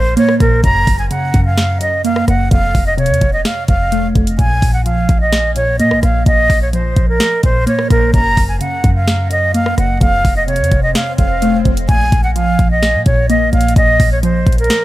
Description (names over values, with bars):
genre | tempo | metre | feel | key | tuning
hip hop, trap | 128 BPM | 4/4 | half-time | Bb minor | A4 = 441 Hz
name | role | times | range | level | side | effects
breathy concert flute | melody | 0.0-14.8 s | Bb4 to Bb5 | -16 LUFS | right 1 dB | dub echo
glassy wavetable pluck | accompaniment | 0.0-14.8 s | F2 to Bb3 | -18 LUFS | equal | chorus, dub echo
clean 808-style bass | bass | 0.0-14.7 s | F1 to Bb2 | -16 LUFS | equal | none
trap drum kit | drums | 0.2-14.8 s | hi-hat, kick drum, rim click, snare drum | -16 LUFS | equal | none
swell | sound effects | 10.4-11.9 s | none | -26 LUFS | right 1 dB | none
room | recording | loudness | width
little or no reverb | echo-heavy mix, vinyl crackle | -11 LUFS | side -16 dB against mid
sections
0.0-11.9 A section; 11.9-14.8 B section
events
swell 10.4-11.9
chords
0.0 Bb5; 0.6 Gb; 2.5 F; 4.4 Bb5; 8.1 Gb; 10.0 F; 11.9 Bb5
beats
0.17 | 0.64 1.11 1.57 2.04 | 2.51 2.98 3.45 3.92 | 4.39 4.86 5.33 5.79 | 6.26 6.73 7.20 7.67 | 8.14 8.61 9.07 9.54 | 10.01 10.48 10.95 11.42 | 11.89 12.36 12.82 13.29 | 13.76 14.23 14.70